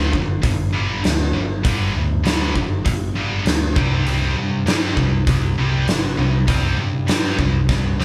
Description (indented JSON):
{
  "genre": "hard rock",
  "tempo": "99 BPM",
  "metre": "4/4",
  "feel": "straight",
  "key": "unclear",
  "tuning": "A4 = 440 Hz",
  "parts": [
    { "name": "scooped high-gain guitar", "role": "riff", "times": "0.0-8.0 s", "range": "G2 to C4", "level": "-25 LUFS", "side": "equal", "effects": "distortion" },
    { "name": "overdriven picked electric bass", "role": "bass", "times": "0.0-8.0 s", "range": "G1 to G2", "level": "-25 LUFS", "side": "equal", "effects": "none" },
    { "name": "huge arena drum kit", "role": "drums", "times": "0.1-8.0 s", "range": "hi-hat, kick drum, snare drum", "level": "-22 LUFS", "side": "equal", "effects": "none" }
  ],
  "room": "moderate studio reverb, RT60 0.6 s",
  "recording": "band playing live in one room",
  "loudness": "-19 LUFS",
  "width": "mono",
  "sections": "0.0-8.0 A section",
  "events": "drum fill 7.7-8.0",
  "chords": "0.0 G5; 3.8 C5"
}